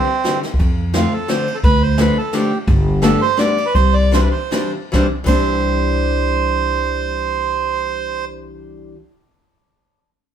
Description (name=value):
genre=musette waltz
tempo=140-174 BPM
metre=3/4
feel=straight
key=C major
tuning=A4 = 437 Hz
part: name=bandoneon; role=melody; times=0.0-8.3 s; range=C4 to D5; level=-19 LUFS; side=right 5 dB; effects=plate reverb
part: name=fingerpicked steel-string acoustic guitar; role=accompaniment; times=0.0-9.0 s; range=D3 to D4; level=-21 LUFS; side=left 2 dB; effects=none
part: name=jazz brush drum kit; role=drums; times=0.2-5.4 s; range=crash cymbal, kick drum, ride cymbal, snare drum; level=-20 LUFS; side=equal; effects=none
part: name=upright bass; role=bass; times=0.6-8.9 s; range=G1 to F2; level=-19 LUFS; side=equal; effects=none
room=wet studio reverb, RT60 0.6 s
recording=heard from further back in the room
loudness=-14 LUFS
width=side -9 dB against mid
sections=0.6-4.9 A section; 4.9-7.5 B section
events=drum fill 0.4; slowing down 2.7-4.9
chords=0.0 Cadd9; 0.6 F6; 1.6 Dm; 2.7 Gadd9; 3.7 Cadd9